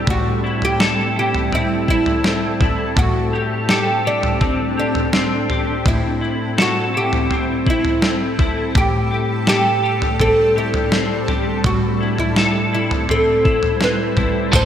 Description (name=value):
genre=dream pop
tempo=83 BPM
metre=4/4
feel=straight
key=A dorian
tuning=A4 = 440 Hz
part: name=oud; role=melody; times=0.0-14.7 s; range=D4 to C5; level=-21 LUFS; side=right 1 dB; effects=digital delay
part: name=shimmering ambient pad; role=sustained chords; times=0.0-14.7 s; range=A2 to A4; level=-23 LUFS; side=equal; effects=chorus, built-in reverb
part: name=clean electric guitar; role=arpeggios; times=0.0-14.7 s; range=A2 to A4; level=-21 LUFS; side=left 2 dB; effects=ensemble chorus, digital delay
part: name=crisp 8-bit digital drum machine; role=drums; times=0.1-14.7 s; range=kick drum, snare drum, tambourine, toms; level=-20 LUFS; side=equal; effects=overdrive, gated reverb
part: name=biting overdriven guitar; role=accompaniment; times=14.5-14.7 s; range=A2 to A4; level=-18 LUFS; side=right 2 dB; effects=tremolo, wide subtle chorus
room=moderate lush hall reverb, RT60 2.5 s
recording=bright 1980s-style digital production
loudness=-15 LUFS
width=side -9 dB against mid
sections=0.0-14.5 A section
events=none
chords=0.1 Am7; 3.0 D7sus4/A; 5.9 Am7; 8.7 D7sus4/A; 11.6 Am7